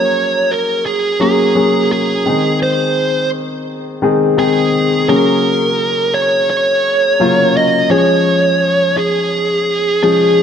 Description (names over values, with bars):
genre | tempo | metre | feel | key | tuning
pop | 85 BPM | 4/4 | swing 55% on 16ths | unclear | A4 = 436 Hz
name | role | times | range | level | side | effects
fuzz lead guitar | melody | 0.0-10.4 s | Ab4 to Eb5 | -14 LUFS | right 2 dB | distortion, ping-pong delay
warm grand piano | accompaniment | 0.0-10.4 s | Db3 to Ab4 | -15 LUFS | left 2 dB | none
room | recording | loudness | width
moderate lush hall reverb, RT60 2.8 s | none | -11 LUFS | side -8 dB against mid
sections
0.0-5.1 A section; 5.1-10.4 B section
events
none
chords
0.0 Gbadd9; 2.3 Ab; 5.1 Gbadd9/Db; 7.9 Db